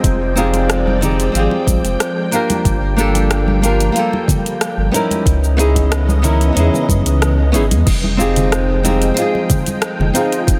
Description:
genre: sunset chillout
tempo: 92 BPM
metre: 4/4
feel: straight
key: unclear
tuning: A4 = 440 Hz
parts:
  - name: flamenco guitar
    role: accompaniment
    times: 0.0-10.6 s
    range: Bb3 to Bb4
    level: -20 LUFS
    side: equal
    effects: digital delay
  - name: soft string machine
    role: sustained chords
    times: 0.0-10.6 s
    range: Db3 to G5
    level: -25 LUFS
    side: equal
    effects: phaser, ensemble chorus
  - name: warm sub bass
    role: bass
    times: 0.0-10.6 s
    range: F1 to Gb2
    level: -18 LUFS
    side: equal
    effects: tube saturation
  - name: electronic kick drum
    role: drums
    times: 0.0-10.6 s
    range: none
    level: -19 LUFS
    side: equal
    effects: none
  - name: smooth R&B drum kit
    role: drums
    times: 0.0-10.6 s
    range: crash cymbal, hi-hat, rim click, shaker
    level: -24 LUFS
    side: equal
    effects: none
  - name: congas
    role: percussion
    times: 0.5-10.6 s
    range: none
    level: -26 LUFS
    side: equal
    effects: none
room: light reverb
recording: none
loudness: -15 LUFS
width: mono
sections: 0.0-7.9 A section; 7.9-10.6 B section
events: none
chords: 0.0 Fm9; 2.3 Gm9; 5.3 Dbm9; 7.9 Fm9

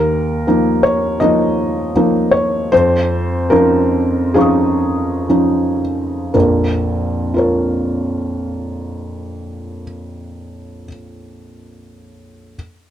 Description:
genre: neoclassical minimalist piano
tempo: 55-82 BPM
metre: 4/4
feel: rubato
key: Bb minor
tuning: A4 = 441 Hz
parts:
  - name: felt-muted upright piano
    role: solo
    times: 0.0-12.6 s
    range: Bb1 to Eb6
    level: -14 LUFS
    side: equal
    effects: none
room: light reverb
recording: dark, warm production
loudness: -13 LUFS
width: side -10 dB against mid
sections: 0.0-6.3 A section; 6.3-10.3 B section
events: slowing down 0.0-6.3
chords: 0.0 Ebsus2; 2.7 Dbadd9/F; 6.3 Bbm

